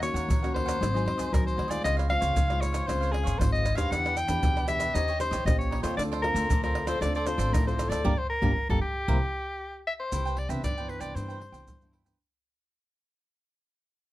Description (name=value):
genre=samba and choro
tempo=116 BPM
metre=4/4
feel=straight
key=C major from 10.1 s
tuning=A4 = 440 Hz
part: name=bright soprano saxophone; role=melody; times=0.0-11.9 s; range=G4 to G5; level=-30 LUFS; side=left 1 dB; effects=plate reverb
part: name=cavaquinho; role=accompaniment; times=0.0-12.2 s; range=Eb4 to G5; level=-38 LUFS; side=right 5 dB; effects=none
part: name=nylon-string guitar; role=accompaniment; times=0.0-12.2 s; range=G2 to C5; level=-34 LUFS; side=left 2 dB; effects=none
part: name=upright bass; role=bass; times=0.0-12.1 s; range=G1 to C3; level=-31 LUFS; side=equal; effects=none
part: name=maracas, pandeiro, tamborim and surdo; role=percussion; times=0.0-12.2 s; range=none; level=-30 LUFS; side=equal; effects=none
room=light reverb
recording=none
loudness=-25 LUFS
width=side -16 dB against mid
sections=0.0-10.1 A section; 10.1-12.2 B section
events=band accent 8.0-10.1; fade-out 10.1-12.2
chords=0.0 Ebm7; 0.8 Ab7; 1.8 Dbmaj7; 3.9 Em7; 4.9 Eb13; 6.0 Dm7; 8.0 Gm; 9.1 C7; 10.1 Cmaj9